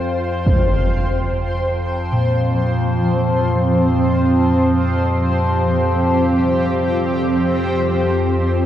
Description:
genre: dark ambient drone.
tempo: free time.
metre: none.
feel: none.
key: unclear.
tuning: A4 = 441 Hz.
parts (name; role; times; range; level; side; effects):
granular cloud pad; sustained chords; 0.0-8.7 s; F3 to G5; -18 LUFS; equal; built-in reverb.
overtone-sweeping drone; drone; 0.0-8.7 s; F2 to F3; -20 LUFS; left 1 dB; chorus, built-in reverb, phaser.
impact; percussion; 0.5-0.7 s; none; -19 LUFS; right 1 dB; low-pass filter on sfx.
gamelan-type bossed gongs; arpeggios; 2.1-8.7 s; Bb2; -23 LUFS; equal; tape echo.
room: wet spring reverb, RT60 2.3 s.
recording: echo-heavy mix.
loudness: -15 LUFS.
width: side -11 dB against mid.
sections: 0.0-8.7 A section.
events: fade-out 7.1-8.7.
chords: 0.5 C5/F.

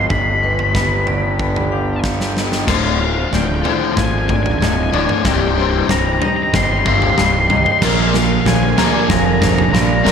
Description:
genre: post-rock.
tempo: 93 BPM.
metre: 4/4.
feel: straight.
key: unclear.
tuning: A4 = 440 Hz.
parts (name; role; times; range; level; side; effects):
octave-fuzz lead guitar; melody; 0.0-10.1 s; F5 to C6; -20 LUFS; left 2 dB; distortion, analog delay.
dark chamber string section; sustained chords; 0.0-10.1 s; D3 to Ab4; -27 LUFS; right 1 dB; none.
twangy electric guitar; arpeggios; 0.0-10.1 s; C2 to Bb4; -26 LUFS; left 3 dB; lush chorus, analog delay.
vibraphone with medium hard mallets; arpeggios; 0.0-10.1 s; Bb4 to F5; -26 LUFS; right 1 dB; analog delay.
fuzz picked electric bass; bass; 0.0-10.1 s; C1 to Bb1; -20 LUFS; equal; overdrive.
big rock drum kit; drums; 0.1-10.1 s; crash cymbal, kick drum, snare drum, toms; -20 LUFS; right 1 dB; none.
raw garage guitar; riff; 2.7-10.1 s; C2 to Bb3; -20 LUFS; left 10 dB; overdrive, ensemble chorus.
sludgy distorted guitar; riff; 7.8-10.1 s; Bb2 to Bb3; -18 LUFS; right 11 dB; overdrive.
room: moderate plate reverb, RT60 3.3 s.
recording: dreamy mix soaked in reverb.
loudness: -13 LUFS.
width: side -7 dB against mid.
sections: 0.0-2.7 A section; 2.7-10.1 B section.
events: drum fill 2.0-2.7, 2.7-10.1; build-up 2.7-10.1.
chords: 0.1 G; 2.7 Ddim; 5.3 Cm; 7.8 Bb7.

